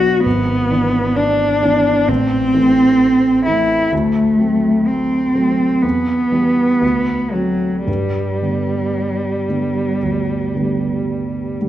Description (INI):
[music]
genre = classical, romantic duo for cello and grand piano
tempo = 55-66 BPM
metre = 4/4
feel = rubato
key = G major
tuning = A4 = 440 Hz
[part]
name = warm cello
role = melody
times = 0.0-11.6 s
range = F#3 to F#4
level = -16 LUFS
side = equal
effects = none
[part]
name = dark grand piano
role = accompaniment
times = 0.0-11.7 s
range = G#1 to D4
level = -19 LUFS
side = right 2 dB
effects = none
[sound]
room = wet recital hall reverb, RT60 1.2 s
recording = none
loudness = -14 LUFS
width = side -12 dB against mid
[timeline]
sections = 0.0-11.7 A section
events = none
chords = 0.2 E7/G#; 2.1 Am; 3.9 D7; 5.8 Em; 6.8 D7; 7.9 G